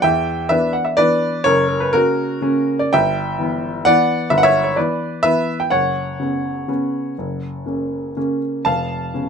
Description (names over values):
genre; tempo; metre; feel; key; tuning
classical, piano waltz; 125 BPM; 3/4; uneven beats, rubato; unclear; A4 = 438 Hz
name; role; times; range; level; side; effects
warm baby grand piano; solo; 0.0-9.3 s; E#1 to A5; -16 LUFS; equal; none
room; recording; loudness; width
light reverb; close, detailed microphones; -16 LUFS; side -6 dB against mid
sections
0.0-9.3 A section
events
none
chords
0.0 Em7; 1.4 F#; 2.9 Em/G; 5.7 F#sus4; 7.2 F#; 8.7 C#7/E#